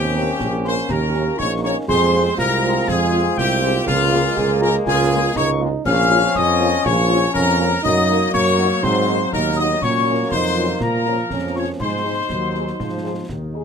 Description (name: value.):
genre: military-style march for wind band.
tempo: 121 BPM.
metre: 2/4.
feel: straight.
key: unclear.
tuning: A4 = 440 Hz.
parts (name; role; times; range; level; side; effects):
clear trumpet section; melody; 0.0-13.3 s; F4 to F5; -22 LUFS; left 3 dB; none.
warm euphonium; second line; 0.0-13.5 s; Bb3 to Ab4; -24 LUFS; right 6 dB; none.
wooden piccolo; second line; 0.0-13.3 s; F5 to F6; -24 LUFS; left 6 dB; none.
mellow trombone section; sustained chords; 0.0-13.6 s; Eb3 to Db4; -24 LUFS; left 3 dB; none.
mellow tuba; bass; 0.0-13.6 s; Bb1 to Bb2; -22 LUFS; right 3 dB; none.
dark French horn section; accompaniment; 0.2-13.6 s; Ab3 to Bb4; -25 LUFS; left 2 dB; none.
concert snare drum, concert bass drum and clash cymbals; drums; 0.4-13.5 s; none; -32 LUFS; equal; none.
room: light reverb.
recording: close, detailed microphones.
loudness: -16 LUFS.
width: side -6 dB against mid.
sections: 0.0-13.6 A section.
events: none.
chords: 0.0 Eb7; 1.9 Fm; 3.9 Bbm7/Db; 5.9 Bbm; 7.8 Ebm/Gb; 8.8 Ab9; 9.8 Bbm; 11.8 Ab.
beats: 0.40 | 0.90 1.39 | 1.89 2.38 | 2.88 3.38 | 3.87 4.37 | 4.86 5.36 | 5.86 6.35 | 6.85 7.34 | 7.84 8.33 | 8.83 9.33 | 9.82 10.32 | 10.81 11.31 | 11.81 12.30 | 12.80 13.29.